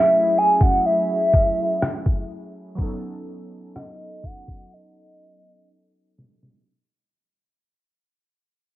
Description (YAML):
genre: contemporary R&B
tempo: 62 BPM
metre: 4/4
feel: straight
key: unclear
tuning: A4 = 440 Hz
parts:
  - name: hollow clarinet-like synth lead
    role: melody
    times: 0.0-6.2 s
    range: D#5 to G#5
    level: -18 LUFS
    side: equal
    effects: chorus, cassette tape
  - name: warm analog keys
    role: accompaniment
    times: 0.0-6.7 s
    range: F#3 to A4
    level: -30 LUFS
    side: right 2 dB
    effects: chorus, phaser, cassette tape
  - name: detuned 8-bit digital drum machine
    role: drums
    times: 0.6-6.6 s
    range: kick drum, rim click, snare drum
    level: -21 LUFS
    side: equal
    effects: cassette tape
room: light reverb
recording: home recording on cassette, low-pass filter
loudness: -17 LUFS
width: side -15 dB against mid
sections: 0.0-6.7 A section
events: fade-out 0.0-6.7; drum fill 4.7-6.7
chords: 0.0 F#m9; 2.8 B9